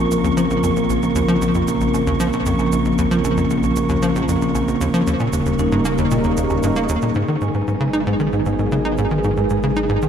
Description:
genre	ambient, sequencer-driven space music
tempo	115 BPM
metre	4/4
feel	straight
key	Bb minor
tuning	A4 = 439 Hz
part	sweeping resonant pad	sustained chords	0.0-10.1 s	Db3 to Bb4	-23 LUFS	right 2 dB	chorus, shimmer reverb
part	vibraphone with soft mallets	arpeggios	0.0-10.1 s	F3 to G#5	-21 LUFS	left 2 dB	auto-pan, tape echo, shimmer reverb
part	tight sequencer bass	riff	0.0-10.1 s	Bb1 to D#4	-20 LUFS	equal	lush chorus, tape echo, shimmer reverb
part	warm sub bass	bass	0.0-10.1 s	Eb1 to Bb1	-29 LUFS	equal	none
part	wind-like tuned noise texture	texture	0.0-7.2 s	Db6	-31 LUFS	right 5 dB	built-in reverb, shimmer reverb
part	cabasa and woodblock	percussion	0.1-10.1 s	none	-36 LUFS	right 6 dB	tape echo
room	wet lush hall reverb, RT60 2.9 s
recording	none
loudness	-16 LUFS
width	side -8 dB against mid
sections	0.0-7.2 A section; 7.2-10.1 B section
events	none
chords	0.0 Bbm; 5.1 Eb7; 7.2 G#m7

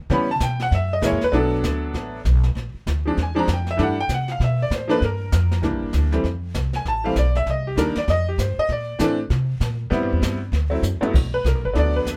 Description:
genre	jazz piano trio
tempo	196 BPM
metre	4/4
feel	swing 61% on 8ths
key	G major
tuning	A4 = 440 Hz
part	bright upright piano	melody	0.1-12.2 s	G2 to B5	-24 LUFS	equal	none
part	upright bass	bass	0.1-12.2 s	G1 to C#3	-24 LUFS	equal	none
part	jazz brush drum kit	drums	0.1-12.2 s	brushed snare drum, crash cymbal, hi-hat, kick drum, snare drum, toms	-29 LUFS	equal	none
room	light reverb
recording	none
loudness	-22 LUFS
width	mono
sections	0.0-1.3 A section; 1.3-11.1 A section; 11.1-12.2 A section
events	upright piano solo 0.0-11.1, 11.1-12.2; drum fill 10.8-11.1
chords	0.1 C#m7b5; 0.7 F#7; 1.3 Bm7; 2.6 Bb7; 3.8 C69; 5.0 Gm7; 5.6 C9; 6.2 F; 7.5 Cm7; 8.1 Fsus2; 8.7 Bbmaj9; 9.9 Am9; 10.5 D; 11.1 Gmaj9 (rootless)

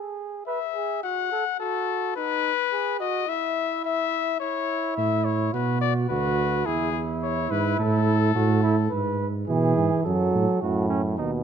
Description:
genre	classical, imitative canzona for brass ensemble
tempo	106 BPM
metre	4/4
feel	straight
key	A major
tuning	A4 = 436 Hz
part	mellow flugelhorn	second line	0.0-11.3 s	C#4 to B4	-29 LUFS	right 5 dB	none
part	clear trumpet	melody	0.5-8.9 s	G#4 to F#5	-26 LUFS	left 13 dB	none
part	mellow tuba	bass	5.0-11.4 s	D2 to B2	-24 LUFS	right 3 dB	none
part	mellow euphonium	accompaniment	9.5-11.4 s	A2 to F#3	-23 LUFS	right 2 dB	none
room	light reverb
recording	close, detailed microphones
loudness	-22 LUFS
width	side -7 dB against mid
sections	0.0-11.4 A section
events	none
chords	0.0 E/G#; 1.0 F#m; 2.2 B/D#; 3.3 N.C.; 4.4 A/E; 5.5 Bm; 6.7 E; 7.8 A5; 8.9 E/G#; 10.1 F#m

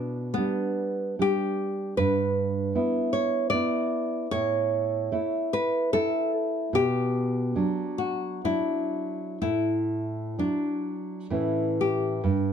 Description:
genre	romantic duo for nylon-string guitar and classical guitar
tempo	59-80 BPM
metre	3/4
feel	rubato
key	unclear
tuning	A4 = 440 Hz
part	nylon-string guitar	melody	0.0-12.5 s	B3 to D5	-27 LUFS	left 1 dB	none
part	nylon-string guitar	accompaniment	0.0-12.5 s	G2 to E4	-27 LUFS	right 1 dB	none
room	moderate small room reverb, RT60 0.5 s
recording	dark, warm production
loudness	-24 LUFS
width	side -8 dB against mid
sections	0.0-12.3 A section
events	none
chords	0.0 G/B; 2.0 Em7/G; 4.3 A; 6.7 Bm; 9.4 D/A; 11.3 A

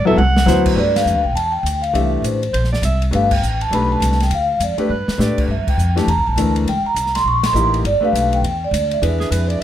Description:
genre	jazz, small-group swing and bop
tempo	204 BPM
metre	4/4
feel	swing 61% on 8ths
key	G mixolydian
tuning	A4 = 438 Hz
part	breathy alto saxophone	second line	0.0-5.4, 9.2-9.6 s	G#4 to F#5	-22 LUFS	right 4 dB	none
part	upright bass	bass	0.0-9.6 s	D1 to A2	-19 LUFS	equal	none
part	warm concert grand piano	accompaniment	0.1-9.6 s	E3 to C5	-20 LUFS	left 3 dB	none
part	open jazz drum kit	drums	0.1-9.5 s	crash cymbal, hi-hat, kick drum, ride cymbal, snare drum, toms	-25 LUFS	equal	none
part	vibraphone with soft mallets	melody	0.8-9.6 s	C5 to C#6	-19 LUFS	equal	none
room	light reverb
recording	close, detailed microphones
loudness	-15 LUFS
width	side -11 dB against mid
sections	0.8-9.6 A section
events	drum fill 0.0-0.5, 4.9; band accent 0.9, 3.3, 5.6, 7.4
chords	0.0 D7; 0.8 G7; 1.9 C7; 3.1 G; 4.3 Dm; 4.9 G; 5.5 C7; 6.7 C#dim7; 7.8 G7; 9.0 E7

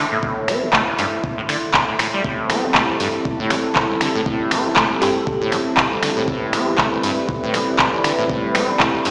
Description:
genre	acid house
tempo	119 BPM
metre	4/4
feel	swing 57% on 16ths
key	A minor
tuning	A4 = 441 Hz
part	liquid acid bass	riff	0.0-9.1 s	A1 to C4	-25 LUFS	equal	tube saturation, lush chorus, sidechain pumping, digital delay
part	deep dark ambient pad	texture	0.0-9.1 s	E4 to C6	-30 LUFS	equal	chorus, built-in reverb, sidechain pumping
part	electronic kick drum	drums	0.2-8.9 s	none	-29 LUFS	equal	none
part	booming analog drum machine	drums	0.5-9.1 s	finger snaps, handclaps, hi-hat	-22 LUFS	equal	none
part	warm analog pad	sustained chords	2.2-9.1 s	G3 to B4	-25 LUFS	equal	chorus, sidechain pumping
part	bell-like FM electric piano	melody	5.0-5.5 s	G4	-28 LUFS	equal	chorus, digital delay
room	wet lush hall reverb, RT60 2.0 s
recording	played on a big sound system in a bare room, large studio reverb, small speaker sound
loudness	-19 LUFS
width	mono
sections	0.0-9.1 A section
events	none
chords	0.0 Am7

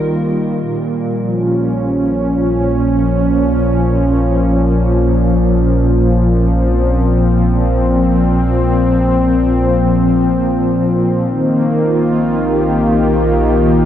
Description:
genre	ambient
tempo	free time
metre	none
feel	none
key	Bb dorian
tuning	A4 = 441 Hz
part	warm analog pad	sustained chords	0.0-13.9 s	Bb2 to G4	-12 LUFS	equal	chorus, tremolo
part	round analog bass	bass	0.0-13.9 s	Bb1	-18 LUFS	equal	tube saturation
part	overtone-sweeping drone	drone	12.2-13.9 s	Bb3 to F4	-21 LUFS	left 3 dB	chorus, built-in reverb
room	wet huge ambient reverb, RT60 8.3 s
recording	worn, warbling old tape, cassette tape, warbly pitch drift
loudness	-12 LUFS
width	side -10 dB against mid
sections	0.6-13.9 A section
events	none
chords	0.0 Eb/Bb; 0.6 Bbm; 11.3 Eb/Bb

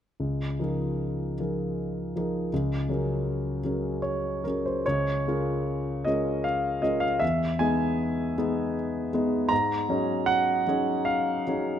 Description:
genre	classical, impressionist solo piano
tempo	77 BPM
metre	3/4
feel	uneven beats, rubato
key	Db major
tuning	A4 = 441 Hz
part	warm concert grand piano	solo	0.2-11.8 s	Db2 to Bb5	-25 LUFS	equal	none
room	moderate concert hall reverb, RT60 2.2 s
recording	close, detailed microphones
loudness	-25 LUFS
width	side -9 dB against mid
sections	0.2-4.8 A section; 4.8-11.8 B section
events	none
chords	0.2 Db69; 2.5 Gbadd9/Db; 4.8 Db6; 7.2 Emaj7; 9.5 Ab9sus4

